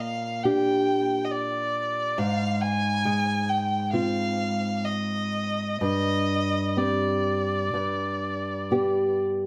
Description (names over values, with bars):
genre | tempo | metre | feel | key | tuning
romantic duo for violin and classical guitar | 61-70 BPM | 4/4 | rubato | unclear | A4 = 438 Hz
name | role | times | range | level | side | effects
dark violin | melody | 0.0-9.2 s | D5 to Ab5 | -30 LUFS | equal | none
nylon-string guitar | accompaniment | 0.0-9.5 s | G2 to G4 | -28 LUFS | equal | none
room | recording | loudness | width
moderate recital hall reverb, RT60 1.7 s | none | -26 LUFS | mono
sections
0.0-9.5 A section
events
none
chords
0.0 Gm/Bb; 2.2 Fm/Ab; 5.8 Gsus4; 7.7 G